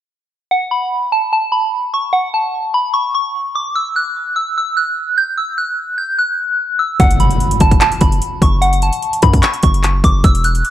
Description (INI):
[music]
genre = hip hop, trap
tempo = 148 BPM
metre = 4/4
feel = half-time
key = F# phrygian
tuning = A4 = 439 Hz
[part]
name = soft synth bell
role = melody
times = 0.5-10.7 s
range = F#5 to G6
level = -16 LUFS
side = equal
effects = chorus, phaser, low-pass filter
[part]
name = hard-hitting 808-style bass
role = bass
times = 7.0-10.6 s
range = E1 to F#2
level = -15 LUFS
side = equal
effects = none
[part]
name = trap drum kit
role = drums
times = 7.0-10.7 s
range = handclaps, hi-hat, kick drum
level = -14 LUFS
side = equal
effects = overdrive
[part]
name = impact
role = sound effects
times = 7.0-8.6 s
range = none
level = -20 LUFS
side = equal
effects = none
[sound]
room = little or no reverb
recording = dry, gritty hardware recording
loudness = -13 LUFS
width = side -12 dB against mid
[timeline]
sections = 0.5-7.0 A section; 7.0-10.7 B section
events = impact 7.0-8.6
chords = 0.5 N.C.; 7.0 F#m